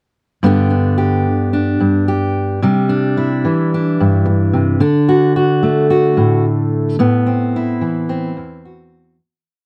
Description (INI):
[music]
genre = highlife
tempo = 110 BPM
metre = 4/4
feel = straight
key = G major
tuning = A4 = 440 Hz
[part]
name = fingerpicked steel-string acoustic guitar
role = solo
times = 0.4-9.2 s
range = E2 to G4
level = -15 LUFS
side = equal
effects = none
[sound]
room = moderate studio reverb, RT60 0.5 s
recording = none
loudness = -15 LUFS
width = mono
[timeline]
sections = 0.4-9.2 A section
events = fade-out 7.0-9.2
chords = 0.4 G; 2.6 Cadd9; 4.8 D; 7.0 Amadd9